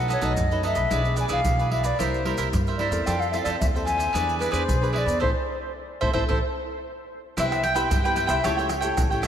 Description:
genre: samba and choro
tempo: 112 BPM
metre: 4/4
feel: straight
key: A minor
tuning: A4 = 439 Hz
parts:
  - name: hollow wooden flute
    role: melody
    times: 0.0-6.4 s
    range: Bb4 to G#5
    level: -27 LUFS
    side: left 1 dB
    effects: tape echo
  - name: cavaquinho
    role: accompaniment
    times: 0.0-9.3 s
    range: D#4 to G5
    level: -29 LUFS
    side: right 4 dB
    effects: none
  - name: nylon-string guitar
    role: accompaniment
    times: 0.0-9.3 s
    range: F#2 to B4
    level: -32 LUFS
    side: left 3 dB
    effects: none
  - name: upright bass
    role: bass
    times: 0.0-9.3 s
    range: A1 to G2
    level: -28 LUFS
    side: equal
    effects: none
  - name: maracas, pandeiro, surdo and tamborim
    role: percussion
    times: 0.1-9.3 s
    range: none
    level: -28 LUFS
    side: right 1 dB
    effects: none
  - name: mandolin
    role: second line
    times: 7.4-8.9 s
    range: C#5 to G5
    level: -25 LUFS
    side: left 1 dB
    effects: tape echo
room: wet lush hall reverb, RT60 2.7 s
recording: dreamy mix soaked in reverb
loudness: -21 LUFS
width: side -9 dB against mid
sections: 0.0-7.4 A section; 7.4-9.3 B section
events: band accent 5.2-7.4; mandolin solo 7.4-9.3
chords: 0.0 B7; 0.9 E7/B; 2.0 C7; 3.1 Fmaj7; 4.1 E7; 5.2 Am; 7.4 Cmaj7; 8.4 A7/C#

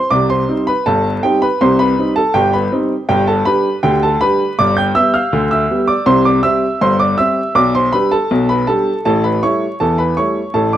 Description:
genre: ragtime piano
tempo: 80 BPM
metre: 2/4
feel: straight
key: G major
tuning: A4 = 440 Hz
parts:
  - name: warm upright piano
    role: solo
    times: 0.0-10.8 s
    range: G1 to G6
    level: -12 LUFS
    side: equal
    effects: none
room: light reverb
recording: dark, warm production, vinyl crackle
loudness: -12 LUFS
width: side -11 dB against mid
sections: 0.0-10.8 A section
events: none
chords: 0.1 Cm; 3.1 G; 4.6 G7; 6.1 C; 7.6 G/B; 9.1 A7

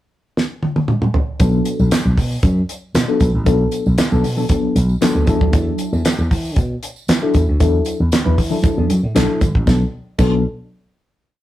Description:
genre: early-eighties boogie funk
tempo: 116 BPM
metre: 4/4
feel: straight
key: B minor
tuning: A4 = 439 Hz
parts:
  - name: damped 70s drum kit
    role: drums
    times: 0.4-10.3 s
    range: crash cymbal, handclaps, hi-hat, kick drum, snare drum, toms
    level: -17 LUFS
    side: equal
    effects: none
  - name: FM electric piano with auto-pan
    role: accompaniment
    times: 1.4-10.4 s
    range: F#3 to B4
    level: -19 LUFS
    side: left 2 dB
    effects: phaser
  - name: slap bass with an envelope filter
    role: bass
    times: 1.4-10.4 s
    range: G#1 to E3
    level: -17 LUFS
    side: equal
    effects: none
  - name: tambourine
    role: percussion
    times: 1.4-10.4 s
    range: none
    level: -39 LUFS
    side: right 5 dB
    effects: none
room: moderate studio reverb, RT60 0.6 s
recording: rough rehearsal-room recording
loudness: -14 LUFS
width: side -14 dB against mid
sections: 0.0-1.4 pickup bar; 1.4-9.7 verse; 9.7-11.4 final chord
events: drum fill 0.4-1.4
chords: 0.0 N.C.; 1.4 Bm7; 5.3 E9sus4; 9.7 Bm7

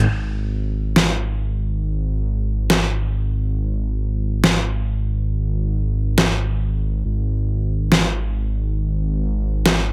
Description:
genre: deep dubstep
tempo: 138 BPM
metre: 4/4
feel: swing 54% on 16ths, half-time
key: unclear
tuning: A4 = 440 Hz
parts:
  - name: dark detuned saw bass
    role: bass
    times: 0.0-9.9 s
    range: G#1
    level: -23 LUFS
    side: equal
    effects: none
  - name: electronic snare drum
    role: drums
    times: 1.0-9.8 s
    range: none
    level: -19 LUFS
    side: equal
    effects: overdrive
room: light reverb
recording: none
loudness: -21 LUFS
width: mono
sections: 0.1-9.9 A section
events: none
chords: none

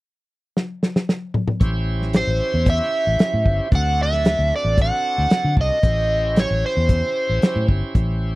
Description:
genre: straight-eighth soul blues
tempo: 114 BPM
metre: 4/4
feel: straight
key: unclear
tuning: A4 = 438 Hz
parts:
  - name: warm soul drum kit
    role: drums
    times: 0.6-8.1 s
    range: hi-hat, kick drum, snare drum, toms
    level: -18 LUFS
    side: equal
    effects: none
  - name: bright tonewheel organ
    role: accompaniment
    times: 1.6-8.4 s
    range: C4 to B#4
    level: -30 LUFS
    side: right 2 dB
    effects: slow rotary speaker, overdrive
  - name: vintage muted fingered electric bass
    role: bass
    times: 1.6-8.4 s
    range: G1 to D3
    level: -21 LUFS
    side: equal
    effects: none
  - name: biting overdriven guitar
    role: melody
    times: 2.2-7.7 s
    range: B#4 to F#5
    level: -21 LUFS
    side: right 1 dB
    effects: none
room: little or no reverb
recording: none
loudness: -17 LUFS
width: side -20 dB against mid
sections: 0.0-1.6 A section; 1.6-8.4 B section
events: drum fill 0.6-1.6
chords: 0.0 N.C.; 1.6 A7#9; 3.7 D7; 5.8 A7#9

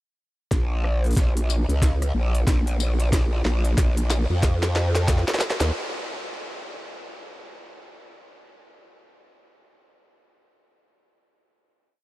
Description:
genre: glitch hop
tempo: 92 BPM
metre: 4/4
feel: swing 60% on 16ths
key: Bb minor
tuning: A4 = 440 Hz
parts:
  - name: growl bass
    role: bass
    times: 0.5-5.7 s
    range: Bb1 to F2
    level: -21 LUFS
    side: equal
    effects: chorus
  - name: drum and bass drum kit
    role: drums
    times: 0.5-5.7 s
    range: hi-hat, rim click, snare drum, tambourine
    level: -28 LUFS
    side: equal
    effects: small room reverb
  - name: electronic kick drum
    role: drums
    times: 0.5-5.2 s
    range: none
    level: -21 LUFS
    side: equal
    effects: small room reverb
room: light reverb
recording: none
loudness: -20 LUFS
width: side -18 dB against mid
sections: 0.5-5.7 build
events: build-up 0.5-5.7; drum fill 0.5-5.7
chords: none

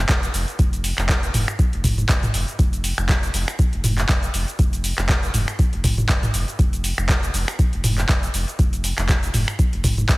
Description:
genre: acid house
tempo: 120 BPM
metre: 4/4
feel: swing 56% on 16ths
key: unclear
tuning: A4 = 440 Hz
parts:
  - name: saturated sub bass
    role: bass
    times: 0.0-10.2 s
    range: F1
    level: -24 LUFS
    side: equal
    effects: tube saturation, sidechain pumping
  - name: booming analog drum machine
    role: drums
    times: 0.1-10.2 s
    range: finger snaps, handclaps, hi-hat, shaker, toms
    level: -22 LUFS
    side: equal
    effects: none
  - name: electronic kick drum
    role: drums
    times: 0.1-10.2 s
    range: none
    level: -19 LUFS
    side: equal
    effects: none
room: light reverb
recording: heavily compressed radio sound, multiband compression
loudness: -18 LUFS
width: side -21 dB against mid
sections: 0.0-10.2 A section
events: none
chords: none

